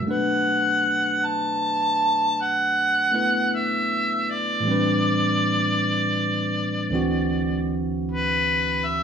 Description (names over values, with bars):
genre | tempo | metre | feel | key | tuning
jazz ballad | 52 BPM | 4/4 | swing 66% on 8ths | unclear | A4 = 443 Hz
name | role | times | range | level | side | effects
warm harmonica | melody | 0.0-9.0 s | B4 to A5 | -22 LUFS | right 1 dB | plate reverb
bell-like tine electric piano | accompaniment | 0.0-9.0 s | D2 to B4 | -24 LUFS | equal | none
room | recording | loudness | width
moderate large studio reverb, RT60 0.9 s | studio ambience | -20 LUFS | side -7 dB against mid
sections
0.0-9.0 A section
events
none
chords
0.0 Bm7; 4.6 Am11; 6.9 D9